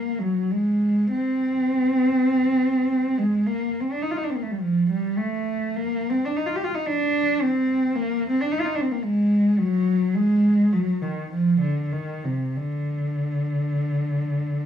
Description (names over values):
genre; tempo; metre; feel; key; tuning
classical, free, expressive piece for unaccompanied cello; 42-56 BPM; 4/4; rubato; unclear; A4 = 440 Hz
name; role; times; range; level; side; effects
dark cello; solo; 0.0-14.7 s; C3 to G4; -21 LUFS; equal; none
room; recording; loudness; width
moderate large studio reverb, RT60 0.9 s; none; -21 LUFS; side -9 dB against mid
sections
0.0-14.7 A section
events
none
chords
none